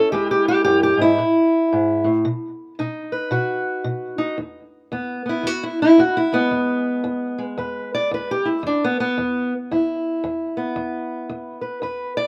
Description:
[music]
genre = acoustic country blues, solo or duo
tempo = 113 BPM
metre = 4/4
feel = swing 62% on 8ths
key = E major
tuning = A4 = 439 Hz
[part]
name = fingerpicked steel-string acoustic guitar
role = solo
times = 0.0-12.3 s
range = E2 to D5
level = -21 LUFS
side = equal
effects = none
[sound]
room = little or no reverb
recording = recorded outdoors, with no room sound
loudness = -21 LUFS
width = mono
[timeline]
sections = 0.0-4.4 A section; 4.4-12.3 A section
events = steel-string acoustic guitar solo 0.0-4.4, 4.4-12.3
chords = 0.1 E; 1.2 A5; 2.2 B; 4.4 E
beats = | 0.11 0.65 1.18 1.72 | 2.25 2.78 3.32 3.85 | 4.38 4.92 5.45 5.98 | 6.52 7.05 7.58 8.11 | 8.64 9.17 9.70 10.23 | 10.76 11.28 11.81

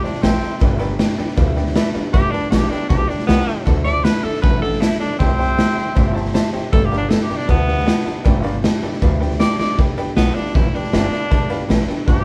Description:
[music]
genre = rockabilly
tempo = 157 BPM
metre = 4/4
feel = straight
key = G major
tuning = A4 = 440 Hz
[part]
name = clear tenor saxophone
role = melody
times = 0.0-12.2 s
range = B3 to D5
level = -25 LUFS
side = equal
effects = none
[part]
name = clear upright piano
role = accompaniment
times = 0.0-12.2 s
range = A4 to A5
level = -31 LUFS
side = equal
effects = none
[part]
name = picked steel-string acoustic guitar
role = accompaniment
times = 0.0-12.2 s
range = G2 to A4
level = -31 LUFS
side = equal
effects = none
[part]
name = upright bass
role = bass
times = 0.0-12.2 s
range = G1 to D2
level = -24 LUFS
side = equal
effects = none
[part]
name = raw garage drum kit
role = drums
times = 0.0-12.2 s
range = hi-hat, kick drum, snare drum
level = -20 LUFS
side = equal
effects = none
[sound]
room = light reverb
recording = band playing live in one room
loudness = -18 LUFS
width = mono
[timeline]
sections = 0.0-9.8 A section; 9.8-12.2 B section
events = tenor saxophone solo 0.0-9.8; upright piano fill 6.0-6.7; drum fill 9.6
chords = 0.0 C; 0.6 G; 3.7 D; 5.2 C; 6.7 G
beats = 0.23 | 0.61 1.00 1.38 1.76 | 2.14 2.52 2.90 3.29 | 3.67 4.05 4.43 4.82 | 5.20 5.58 5.96 6.34 | 6.73 7.11 7.49 7.87 | 8.26 8.64 9.02 9.40 | 9.78 10.16 10.55 10.93 | 11.31 11.69 12.07

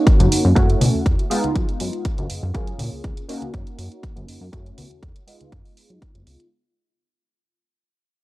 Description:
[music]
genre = filtered disco house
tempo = 121 BPM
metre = 4/4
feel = straight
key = F# major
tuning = A4 = 440 Hz
[part]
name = funky polysynth comp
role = accompaniment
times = 0.0-6.5 s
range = G#3 to G#4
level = -24 LUFS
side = right 1 dB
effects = chorus, phaser, cassette tape, sidechain pumping, low-pass filter
[part]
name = electronic hi-hat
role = drums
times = 0.1-6.5 s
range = none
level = -30 LUFS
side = right 2 dB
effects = overdrive, sidechain pumping on hats
[part]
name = electronic kick drum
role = drums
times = 0.1-6.1 s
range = none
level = -19 LUFS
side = equal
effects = overdrive
[part]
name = tambourine and congas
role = percussion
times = 0.1-6.5 s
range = none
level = -26 LUFS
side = left 1 dB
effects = sidechain pumping on perc, low-pass filter on perc
[part]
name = plucky analog bass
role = bass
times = 0.2-6.4 s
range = C#2 to B2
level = -21 LUFS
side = equal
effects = sidechain pumping, low-pass filter
[sound]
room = digital ambience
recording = dry, gritty hardware recording, transformer saturation, cassette tape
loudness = -18 LUFS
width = side -18 dB against mid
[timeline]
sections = 0.0-6.5 A section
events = fade-out 0.0-6.5; filter sweep 0.0-6.5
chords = 0.0 F#6; 0.6 A69; 1.3 G#m6; 2.5 F#maj7; 3.3 F#6; 4.5 A69; 5.3 C#7/F# (rootless)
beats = 0.07 | 0.56 1.06 1.55 2.05 | 2.55 3.04 3.54 4.04 | 4.53 5.03 5.52 6.02

